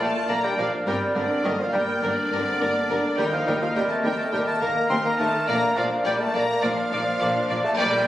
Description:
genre	quick classical-period movement for symphony orchestra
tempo	104 BPM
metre	4/4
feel	straight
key	Bb major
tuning	A4 = 440 Hz
part	warm studio violin section	melody	0.0-8.0 s	Bb4 to D5	-30 LUFS	left 2 dB	none
part	hollow concert flute	second line	0.0-8.1 s	D5 to Eb5	-31 LUFS	equal	none
part	rich studio violin section	second line	0.0-8.1 s	D5 to C6	-31 LUFS	left 2 dB	none
part	warm clarinet	second line	0.0-8.1 s	Bb4	-30 LUFS	equal	none
part	warm oboe	second line	0.0-8.1 s	D5 to C6	-30 LUFS	equal	none
part	warm bassoon	accompaniment	0.0-8.1 s	D3 to C4	-26 LUFS	equal	none
part	warm studio viola section	accompaniment	0.0-8.1 s	Bb3 to F4	-34 LUFS	equal	none
part	dark French horn section	sustained chords	0.0-8.1 s	D3 to C4	-34 LUFS	left 2 dB	none
part	rich studio cello section	bass	0.0-8.1 s	Eb2 to Bb2	-32 LUFS	equal	none
part	warm studio double bass section	bass	0.0-8.1 s	G1 to Eb2	-35 LUFS	equal	none
room	moderate scoring stage reverb, RT60 1.9 s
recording	recorded on a phone in the room, studio reverb, compression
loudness	-21 LUFS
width	side -13 dB against mid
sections	0.0-8.1 A section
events	none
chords	0.0 Bb; 0.9 Gm; 3.2 Eb5; 5.5 Bb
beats	0.29 | 0.87 1.45 2.03 2.60 | 3.18 3.76 4.33 4.91 | 5.48 6.05 6.63 7.20 | 7.78

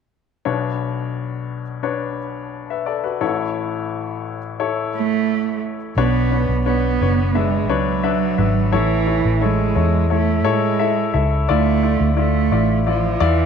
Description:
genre	pop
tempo	87 BPM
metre	4/4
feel	straight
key	unclear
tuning	A4 = 440 Hz
part	warm baby grand piano	accompaniment	0.5-13.5 s	A1 to E5	-21 LUFS	left 9 dB	none
part	dark cello	melody	5.0-13.5 s	E3 to B3	-20 LUFS	right 12 dB	none
part	vintage muted fingered electric bass	bass	6.0-13.5 s	F#1 to A2	-19 LUFS	equal	none
room	moderate spring reverb, RT60 2.5 s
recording	1960s-style stereo with parts hard left and right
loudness	-17 LUFS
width	side -7 dB against mid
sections	0.5-6.0 A section; 6.0-13.5 B section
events	none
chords	0.5 Bmadd9; 3.2 A; 6.0 Bmadd9; 8.7 A; 11.5 Dmadd9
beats	| 0.46 1.15 1.83 2.52 | 3.21 3.90 4.59 5.28 | 5.97 6.66 7.35 8.04 | 8.73 9.42 10.11 10.80 | 11.49 12.18 12.87

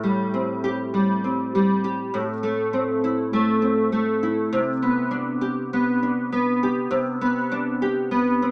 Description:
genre	indie pop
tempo	100 BPM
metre	4/4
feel	straight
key	C major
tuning	A4 = 439 Hz
part	nylon-string guitar	solo	0.0-8.5 s	A2 to G4	-23 LUFS	equal	analog chorus, warbly pitch drift
room	moderate small room reverb, RT60 0.6 s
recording	rough home demo mix, small speaker sound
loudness	-23 LUFS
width	mono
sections	0.0-8.5 A section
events	none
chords	0.0 Am7; 2.1 Am; 4.5 Csus2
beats	0.33 0.93 1.53 | 2.13 2.73 3.32 3.92 | 4.52 5.12 5.72 6.32 | 6.91 7.51 8.11

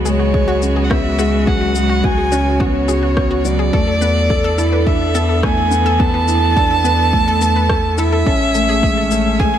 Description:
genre	piano and strings electronica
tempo	106 BPM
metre	4/4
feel	straight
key	unclear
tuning	A4 = 440 Hz
part	rich string quartet	sustained chords	0.0-9.6 s	C#3 to A4	-26 LUFS	right 3 dB	none
part	felt-muted upright piano	riff	0.0-9.6 s	F#3 to A4	-18 LUFS	left 1 dB	none
part	warm sub bass	bass	0.0-9.6 s	A1 to E2	-19 LUFS	equal	sidechain pumping
part	dark violin	melody	0.1-9.6 s	C#5 to A5	-19 LUFS	right 2 dB	none
part	analog pluck	arpeggios	0.1-9.6 s	F#4 to B4	-27 LUFS	left 2 dB	chorus, sidechain pumping, ping-pong delay
part	electronic shaker and rim click	drums	0.1-9.2 s	none	-26 LUFS	left 3 dB	none
part	electronic kick drum	drums	0.3-9.5 s	none	-19 LUFS	equal	overdrive
room	light reverb, studio reverb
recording	none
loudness	-13 LUFS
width	side -10 dB against mid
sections	0.0-9.6 A section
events	none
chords	0.0 C#7sus4; 3.7 E7sus4; 8.3 Amaj7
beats	0.34 0.90 | 1.47 2.04 2.60 3.17 | 3.73 4.30 4.87 5.43 | 6.00 6.56 7.13 7.70 | 8.26 8.83 9.39

